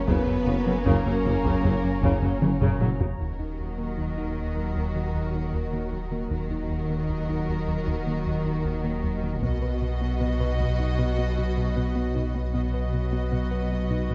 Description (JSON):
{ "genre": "cinematic, hybrid orchestral and electronic film score", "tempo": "77 BPM", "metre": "4/4", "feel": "straight", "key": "Eb minor", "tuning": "A4 = 440 Hz", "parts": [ { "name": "pure sine lead", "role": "melody", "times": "0.0-2.4 s", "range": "Bb4 to Cb5", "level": "-36 LUFS", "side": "equal", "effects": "chorus, phaser, tape echo" }, { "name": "warm symphonic violin section", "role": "melody", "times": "0.0-2.4 s", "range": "Bb4 to Cb5", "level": "-42 LUFS", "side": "equal", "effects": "none" }, { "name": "warm symphonic violin section", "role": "second line", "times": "0.0-14.1 s", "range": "Bb3 to D#5", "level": "-38 LUFS", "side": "equal", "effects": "none" }, { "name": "mellow French horn section", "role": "sustained chords", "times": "0.0-2.8 s", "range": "Gb3 to Db4+22c", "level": "-35 LUFS", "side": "equal", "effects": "none" }, { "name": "warbly tape-like pad", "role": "sustained chords", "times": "0.0-14.1 s", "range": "Gb3 to Bb5", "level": "-37 LUFS", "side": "equal", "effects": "chorus, built-in reverb" }, { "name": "rich symphonic cello section", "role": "bass", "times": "0.0-14.1 s", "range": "B2 to Cb4", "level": "-36 LUFS", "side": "equal", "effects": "none" }, { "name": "saturated sub bass", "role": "bass", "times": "0.0-14.1 s", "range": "Eb1 to B1", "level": "-33 LUFS", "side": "equal", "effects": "none" }, { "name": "warm symphonic viola section", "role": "accompaniment", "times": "0.1-3.1 s", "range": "Db3 to Gb3", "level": "-35 LUFS", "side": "equal", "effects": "none" }, { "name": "thumb-piano-like synth pluck", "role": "arpeggios", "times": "0.1-14.1 s", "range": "Eb3 to B4", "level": "-38 LUFS", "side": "equal", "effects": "chorus, tape echo" }, { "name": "plucky analog bass", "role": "riff", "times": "0.1-14.1 s", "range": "Eb2 to B3", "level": "-33 LUFS", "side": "equal", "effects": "none" }, { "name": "mellow tuba", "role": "bass", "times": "0.1-2.9 s", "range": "Gb1", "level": "-34 LUFS", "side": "equal", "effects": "none" }, { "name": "warm symphonic double bass section", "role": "bass", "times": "0.1-14.1 s", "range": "Gb1 to Eb2", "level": "-34 LUFS", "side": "equal", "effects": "none" }, { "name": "solo taiko drums", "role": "drums", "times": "0.1-4.7, 9.4-11.0 s", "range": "none", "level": "-31 LUFS", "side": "equal", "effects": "none" }, { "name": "reverse cymbal", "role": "sound effects", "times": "14.1 s", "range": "none", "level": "barely audible", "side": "none", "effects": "none" } ], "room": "light reverb", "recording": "dark, warm production, nothing above 8.0 kHz", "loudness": "-26 LUFS", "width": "mono", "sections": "0.0-3.2 A section; 3.2-14.1 B section", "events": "drum fill 2.4-3.2", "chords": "0.0 Gb; 3.2 Ebm; 9.4 B", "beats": "| 0.08 0.86 1.64 2.42 | 3.20 3.98 4.76 5.54 | 6.32 7.09 7.87 8.65 | 9.43 10.21 10.99 11.77 | 12.55 13.33 14.11" }